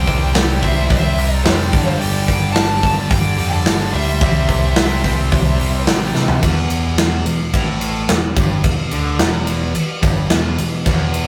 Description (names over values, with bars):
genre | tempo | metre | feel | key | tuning
hard rock | 108 BPM | 4/4 | straight | E minor | A4 = 439 Hz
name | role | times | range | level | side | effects
lead guitar through a small cranked amp | melody | 0.0-5.8 s | D5 to A5 | -25 LUFS | equal | overdrive
octave-fuzz lead guitar | second line | 0.0-5.8 s | G4 to D5 | -32 LUFS | equal | distortion
cranked stack guitar | riff | 0.0-11.3 s | E2 to C4 | -30 LUFS | equal | none
high-gain distorted guitar | riff | 0.0-11.3 s | E2 to C4 | -26 LUFS | equal | distortion
high-gain distorted guitar | riff | 0.0-6.4, 10.9-11.3 s | E2 to C4 | -30 LUFS | equal | distortion
overdriven picked electric bass | bass | 0.0-11.3 s | E1 to C3 | -22 LUFS | equal | none
big rock drum kit | drums | 0.1-11.3 s | hi-hat, kick drum, ride cymbal, snare drum, toms | -19 LUFS | equal | none
room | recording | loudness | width
moderate studio reverb, RT60 0.6 s | rough rehearsal-room recording | -16 LUFS | mono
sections
0.0-6.4 A section; 6.4-11.3 B section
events
drum fill 6.1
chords
0.0 C; 1.7 G5; 4.2 C; 6.4 Em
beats
0.35 0.90 1.45 | 2.00 2.56 3.11 3.66 | 4.21 4.77 5.32 5.87 | 6.43 6.98 7.53 8.09 | 8.64 9.20 9.75 10.31 | 10.86